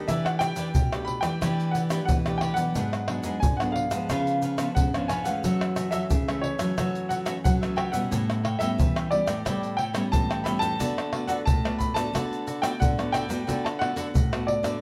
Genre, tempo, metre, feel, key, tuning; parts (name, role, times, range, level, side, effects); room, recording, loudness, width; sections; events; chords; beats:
samba and choro; 90 BPM; 4/4; straight; D major; A4 = 440 Hz
cavaquinho; accompaniment; 0.0-14.8 s; D4 to G5; -37 LUFS; equal
nylon-string guitar; accompaniment; 0.0-14.8 s; F#2 to G4; -35 LUFS; equal
nylon-string guitar; bass; 0.0-14.8 s; G#2 to C#4; -32 LUFS; equal
warm baby grand piano; melody; 0.1-14.8 s; C#5 to B5; -32 LUFS; equal
egg shaker, surdo, pandeiro and tamborim; percussion; 0.1-14.8 s; -30 LUFS; equal
moderate studio reverb, RT60 0.6 s; band playing live in one room; -26 LUFS; mono
0.0-14.8 A section
0.1 Em11; 2.8 G#m7b5; 4.1 C#7b9; 5.4 F#m7; 8.1 A9; 10.8 D6
| 0.09 0.75 1.42 2.09 | 2.76 3.43 4.10 4.77 | 5.44 6.11 6.78 7.45 | 8.12 8.79 9.46 10.13 | 10.80 11.47 12.14 12.81 | 13.48 14.15